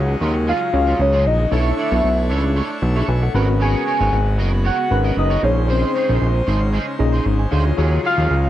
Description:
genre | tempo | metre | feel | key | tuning
funk | 115 BPM | 4/4 | straight | Eb minor | A4 = 440 Hz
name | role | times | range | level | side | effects
warm velvety synth lead | melody | 0.0-8.5 s | C5 to Ab5 | -20 LUFS | equal | chorus, tremolo, slapback echo
pipe organ, full organ | sustained chords | 0.0-8.5 s | Db3 to C#5 | -29 LUFS | left 1 dB | none
fat analog bass | bass | 0.0-8.5 s | Gb1 to Eb2 | -17 LUFS | equal | none
electric guitar at the edge of break-up | riff | 0.1-8.5 s | Gb3 to Eb5 | -28 LUFS | right 4 dB | ensemble chorus
tine electric piano | accompaniment | 0.7-8.3 s | Db4 to Ab5 | -24 LUFS | left 2 dB | overdrive, medium stereo tremolo
room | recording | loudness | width
little or no reverb | dry, close 1970s-style studio recording | -16 LUFS | side -13 dB against mid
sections
0.0-8.5 A section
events
none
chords
0.0 Ebm11; 1.5 Bm11; 3.3 Abm11; 5.4 Bbm11; 7.8 Ebm11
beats
0.47 1.00 | 1.52 2.04 2.56 3.08 | 3.61 4.13 4.65 5.17 | 5.69 6.21 6.74 7.26 | 7.78 8.30

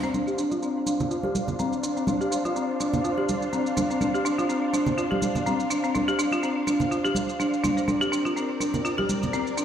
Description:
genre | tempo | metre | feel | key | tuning
afro house | 124 BPM | 4/4 | swing 55% on 16ths | D minor | A4 = 440 Hz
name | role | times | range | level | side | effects
clear symphonic string section | sustained chords | 0.0-9.6 s | C4 to Bb5 | -30 LUFS | right 1 dB | low-pass filter
folk marimba with hard mallets | arpeggios | 0.0-9.6 s | C4 to C5 | -25 LUFS | left 1 dB | low-pass filter, dub echo
shaker | drums | 0.0-9.6 s | none | -37 LUFS | right 3 dB | none
congas | percussion | 0.1-9.4 s | none | -30 LUFS | right 2 dB | none
room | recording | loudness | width
moderate scoring stage reverb, RT60 1.7 s, small room reverb | played on a big sound system in a bare room, large studio reverb | -23 LUFS | side -9 dB against mid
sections
0.1-9.6 A section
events
filter sweep on marimba 0.1-9.6; filter sweep on string section 0.1-9.6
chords
0.1 Dm7; 7.9 Bbadd9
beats
| 0.14 0.63 1.11 1.59 | 2.08 2.56 3.05 3.53 | 4.01 4.50 4.98 5.46 | 5.95 6.43 6.92 7.40 | 7.88 8.37 8.85 9.34

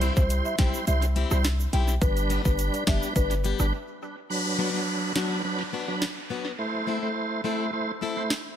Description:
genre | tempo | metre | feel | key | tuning
dancehall | 105 BPM | 4/4 | straight | B phrygian | A4 = 440 Hz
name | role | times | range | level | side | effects
tonewheel organ | accompaniment | 0.0-8.3 s | F#3 to C5 | -29 LUFS | right 3 dB | overdrive, chorus vibrato, stopped rotary speaker, sidechain pumping, analog delay
picked plugged-in swing-style acoustic guitar | arpeggios | 0.0-8.2 s | F#3 to A4 | -33 LUFS | left 7 dB | none
hard-hitting 808-style bass | bass | 0.0-3.7 s | F#1 to C2 | -25 LUFS | equal | none
island pop drum kit | drums | 0.0-8.4 s | hi-hat, kick drum, rim click, snare drum | -28 LUFS | equal | overdrive, analog delay
egg shaker | percussion | 0.0-3.7 s | none | -39 LUFS | right 6 dB | analog delay
marimba with medium mallets | melody | 0.2-3.6 s | B4 to G5 | -33 LUFS | left 3 dB | analog delay
downlifter | sound effects | 4.3-8.6 s | none | -35 LUFS | left 1 dB | none
room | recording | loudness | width
light reverb | echo-heavy mix | -24 LUFS | side -10 dB against mid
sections
0.0-4.3 A section; 4.3-8.6 B section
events
break 3.7-4.3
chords
0.0 C; 2.0 G; 4.3 Bm; 6.6 Am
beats
0.30 0.87 1.44 | 2.02 2.59 3.16 3.73 | 4.30 4.87 5.44 6.01 | 6.59 7.16 7.73 8.30

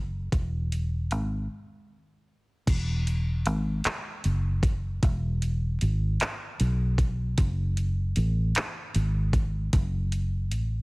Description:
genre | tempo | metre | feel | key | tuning
slow six-eight R&B | 51 BPM (dotted quarters) | 6/8 | straight | unclear | A4 = 438 Hz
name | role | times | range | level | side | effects
fingered electric bass | bass | 0.0-10.8 s | E1 to B1 | -26 LUFS | equal | none
smooth R&B drum kit | drums | 0.3-10.7 s | crash cymbal, handclaps, hi-hat, kick drum | -27 LUFS | equal | none
room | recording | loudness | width
little or no reverb | heavily compressed radio sound, multiband compression | -25 LUFS | side -27 dB against mid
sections
0.0-2.7 A section; 2.7-10.8 B section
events
break 1.5-2.7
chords
none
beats
| 0.32 1.50 | 2.67 3.85 | 5.03 6.20 | 7.38 8.55 | 9.73

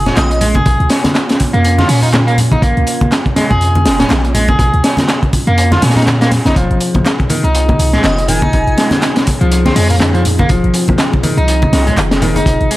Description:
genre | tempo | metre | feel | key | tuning
breakbeat, breaks | 122 BPM | 4/4 | swing 58% on 16ths | F minor | A4 = 445 Hz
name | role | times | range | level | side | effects
warbly tape-like pad | sustained chords | 0.0-12.8 s | F3 to Ab4 | -23 LUFS | equal | chorus, built-in reverb, sidechain pumping
electric guitar at the edge of break-up | riff | 0.0-12.8 s | Eb3 to Ab4 | -16 LUFS | equal | dub echo
warm 808-style bass | bass | 0.0-12.7 s | F1 to Bb2 | -14 LUFS | equal | none
crunchy breakbeat drum kit | drums | 0.1-12.8 s | hi-hat, kick drum, snare drum | -14 LUFS | equal | none
punchy analog drum machine | drums | 0.1-12.8 s | handclaps, hi-hat | -22 LUFS | equal | none
congas | percussion | 0.1-12.4 s | none | -20 LUFS | left 1 dB | none
airy dreamy lead | melody | 0.2-0.4, 8.0-9.0 s | Eb5 to Ab5 | -21 LUFS | equal | chorus, small speaker sound, dub echo
room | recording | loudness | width
small room ambience | vinyl crackle | -10 LUFS | side -17 dB against mid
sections
0.0-12.8 A section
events
none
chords
0.0 Bbm; 6.6 Fm7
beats
0.17 | 0.66 1.15 1.64 2.13 | 2.63 3.12 3.61 4.10 | 4.59 5.09 5.58 6.07 | 6.56 7.05 7.54 8.04 | 8.53 9.02 9.51 10.00 | 10.50 10.99 11.48 11.97 | 12.46

